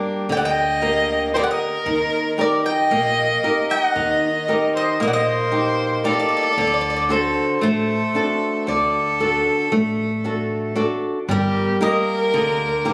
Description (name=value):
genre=greek folk, Greek bouzouki band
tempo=115 BPM (eighths)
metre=9/8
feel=straight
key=D phrygian dominant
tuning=A4 = 440 Hz
part: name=Greek bouzouki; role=melody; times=0.0-12.9 s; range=G4 to G5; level=-26 LUFS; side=equal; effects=none
part: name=rich violin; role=second line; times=0.0-12.9 s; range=D4 to Eb5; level=-24 LUFS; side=equal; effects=none
part: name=flamenco guitar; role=accompaniment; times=0.0-12.9 s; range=D3 to Bb4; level=-24 LUFS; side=equal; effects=none
part: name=upright bass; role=bass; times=0.3-12.7 s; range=G1 to Eb2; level=-33 LUFS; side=equal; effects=none
room=moderate small room reverb, RT60 0.5 s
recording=recorded on a phone in the room, club reverb, compression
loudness=-20 LUFS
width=mono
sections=0.0-11.3 A section; 11.3-12.9 B section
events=none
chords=0.0 Gm; 1.9 Eb; 6.6 D; 11.3 Gm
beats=0.30 0.82 1.34 | 1.87 2.39 2.92 3.44 3.96 4.49 5.01 5.53 6.06 | 6.58 7.10 7.63 8.15 8.67 9.20 9.72 10.24 10.77 | 11.29 11.81 12.34 12.86